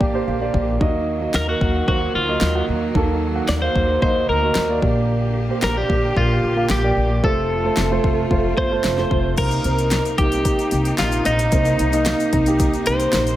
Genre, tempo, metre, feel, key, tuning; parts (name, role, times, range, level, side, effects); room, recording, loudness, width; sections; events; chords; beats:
piano-driven pop; 112 BPM; 4/4; straight; A4 = 440 Hz
warm concert grand piano; accompaniment; 0.0-13.4 s; Bb2 to Bb5; -22 LUFS; right 3 dB
bright studio string section; sustained chords; 0.0-13.4 s; C3 to G4; -30 LUFS; left 1 dB
upright bass; bass; 0.0-13.4 s; F1 to Eb2; -23 LUFS; left 1 dB
deep house drum kit; drums; 0.0-13.4 s; crash cymbal, hi-hat, kick drum, snare drum; -22 LUFS; left 1 dB
twelve-string electric guitar; melody; 1.4-13.4 s; Eb4 to D5; -21 LUFS; equal; spring reverb
tube shaker; percussion; 9.4-13.4 s; -37 LUFS; left 9 dB
light reverb, small room ambience; -16 LUFS; side -13 dB against mid
0.0-9.4 A section; 9.4-13.4 B section
grand piano fill 0.0-0.8
0.0 Bb6; 0.8 Ebm; 4.8 Bb6; 7.2 F; 9.4 Cm7
0.27 | 0.81 1.34 1.88 2.42 | 2.95 3.49 4.02 4.56 | 5.09 5.63 6.17 6.70 | 7.24 7.77 8.31 8.85 | 9.38 9.92 10.45 10.99 | 11.53 12.06 12.60 13.13